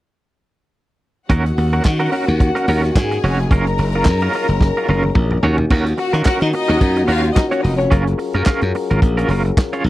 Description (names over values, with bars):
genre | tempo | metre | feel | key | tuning
disco | 109 BPM | 4/4 | swing 56% on 16ths | Eb minor | A4 = 440 Hz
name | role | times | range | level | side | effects
clear studio string section | second line | 1.3-7.9 s | Db4 to Bb5 | -23 LUFS | left 3 dB | none
electric guitar at the edge of break-up | accompaniment | 1.3-9.9 s | Db4 to Db5 | -22 LUFS | right 3 dB | tremolo
dark French horn section | sustained chords | 1.3-9.9 s | Eb3 to Bb4 | -23 LUFS | left 3 dB | none
glassy slap bass | bass | 1.3-9.9 s | F1 to Eb3 | -17 LUFS | equal | none
warm soul drum kit | drums | 1.3-9.9 s | crash cymbal, handclaps, hi-hat, kick drum, snare drum, toms | -16 LUFS | equal | none
room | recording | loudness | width
small room ambience | dry, close 1970s-style studio recording | -14 LUFS | side -16 dB against mid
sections
1.3-5.7 A section; 5.7-9.9 B section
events
drum fill 4.6-5.7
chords
1.3 Ebm7; 3.5 Gbmaj7; 5.4 Ebm7; 7.9 Gbmaj7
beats
| 1.29 1.85 2.40 2.95 | 3.50 4.06 4.61 5.16 | 5.71 6.26 6.81 7.36 | 7.91 8.46 9.02 9.57